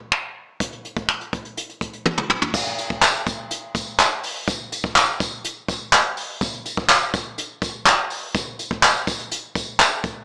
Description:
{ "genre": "pop", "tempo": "124 BPM", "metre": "4/4", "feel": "straight", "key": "none", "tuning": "none", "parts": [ { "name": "jazz brush drum kit", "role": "drums", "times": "0.1-10.2 s", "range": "crash cymbal, finger snaps, handclaps, hi-hat, kick drum, toms", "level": "-18 LUFS", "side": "equal", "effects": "none" }, { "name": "tambourine", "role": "percussion", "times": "2.5-10.2 s", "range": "none", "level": "-29 LUFS", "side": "equal", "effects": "none" } ], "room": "moderate plate reverb, RT60 1.2 s, studio reverb", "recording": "small speaker sound", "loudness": "-19 LUFS", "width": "side -37 dB against mid", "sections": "0.0-2.5 A section; 2.5-10.2 B section", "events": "drum fill 2.1-2.5", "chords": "none", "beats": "0.12 | 0.60 1.09 1.57 2.06 | 2.54 3.02 3.51 3.99 | 4.48 4.96 5.44 5.93 | 6.41 6.89 7.38 7.86 | 8.35 8.83 9.31 9.80" }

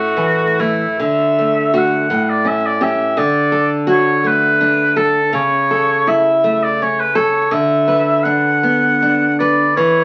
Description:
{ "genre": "romantic duo for oboe and classical guitar", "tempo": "55 BPM (dotted quarters)", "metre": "6/8", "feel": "uneven beats, rubato", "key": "A major", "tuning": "A4 = 439 Hz", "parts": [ { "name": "clear oboe", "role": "melody", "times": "0.0-10.0 s", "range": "E4 to F#5", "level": "-17 LUFS", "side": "equal", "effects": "none" }, { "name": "nylon-string guitar", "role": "accompaniment", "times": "0.0-10.0 s", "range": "A2 to B4", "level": "-19 LUFS", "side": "equal", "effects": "none" } ], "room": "wet studio reverb, RT60 0.5 s", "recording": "very old 78 rpm record, vinyl crackle", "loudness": "-15 LUFS", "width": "mono", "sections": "0.0-10.0 A section", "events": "none", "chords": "0.0 A5; 1.0 D; 2.1 A7; 3.2 D; 5.4 A/C#; 7.5 Bm/D", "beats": "| 1.01 2.10 | 3.18 4.27 | 5.35 6.44 | 7.54 8.66 | 9.80" }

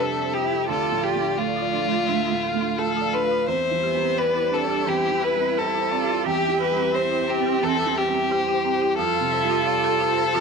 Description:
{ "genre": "neoclassical piano and strings", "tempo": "87 BPM", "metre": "4/4", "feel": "rubato", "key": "C major", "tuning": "A4 = 440 Hz", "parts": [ { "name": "clear violin", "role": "melody", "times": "0.0-10.4 s", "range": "F4 to C5", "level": "-22 LUFS", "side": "left 5 dB", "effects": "slapback echo" }, { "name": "rich cello", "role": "second line", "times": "0.0-10.4 s", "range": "A3 to A4", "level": "-28 LUFS", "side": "right 12 dB", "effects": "none" }, { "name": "clear upright piano", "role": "accompaniment", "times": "0.0-10.4 s", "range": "D2 to D5", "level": "-29 LUFS", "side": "right 10 dB", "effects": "none" }, { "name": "clear viola", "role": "accompaniment", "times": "0.0-10.4 s", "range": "B4 to F5", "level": "-34 LUFS", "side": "right 12 dB", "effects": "none" }, { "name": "airy breathy pad", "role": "sustained chords", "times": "0.0-10.4 s", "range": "F3 to E5", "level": "-36 LUFS", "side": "equal", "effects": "chorus" }, { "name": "folk marimba with hard mallets", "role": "arpeggios", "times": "0.0-10.4 s", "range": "C4 to F5", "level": "-32 LUFS", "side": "right 11 dB", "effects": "slapback echo" } ], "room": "light reverb, studio reverb", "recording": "1960s-style stereo", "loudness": "-20 LUFS", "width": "side -5 dB against mid", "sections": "0.0-10.4 A section", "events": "none", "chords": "0.0 Fadd9; 0.7 Dmadd9; 3.5 C/E; 9.0 Fadd9", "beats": "| 0.69 1.38 2.08 2.79 | 3.48 4.18 4.87 5.56 | 6.25 6.93 7.63 8.31 | 8.99 9.67 10.35" }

